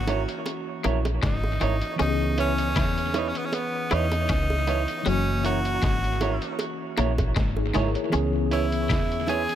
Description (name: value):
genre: lovers rock reggae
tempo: 78 BPM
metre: 4/4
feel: swing 55% on 16ths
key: unclear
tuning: A4 = 440 Hz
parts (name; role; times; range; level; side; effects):
- edgy tenor saxophone; melody; 0.0-9.6 s; B3 to G#4; -29 LUFS; equal; tape echo
- mellow tine electric piano; accompaniment; 0.0-9.6 s; E3 to C#5; -30 LUFS; left 2 dB; slow stereo tremolo, tape echo
- deep dub fingered electric bass; bass; 0.0-9.5 s; F#1 to E2; -27 LUFS; equal; none
- electric guitar through a small old amp; stabs; 0.1-9.4 s; E4 to C#5; -31 LUFS; right 8 dB; spring reverb, tape echo
- lo-fi sampler-style drum kit; drums; 0.1-9.6 s; hi-hat, kick drum, snare drum; -29 LUFS; equal; tape echo
- bongos; percussion; 0.1-9.5 s; none; -33 LUFS; right 4 dB; none
- twangy electric guitar; riff; 0.8-9.1 s; F#3 to E4; -33 LUFS; left 7 dB; ensemble chorus
room: little or no reverb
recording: none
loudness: -22 LUFS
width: side -11 dB against mid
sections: 0.0-9.6 A section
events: none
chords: 0.0 F#7; 2.0 C#m7; 5.1 F#7; 8.1 C#m7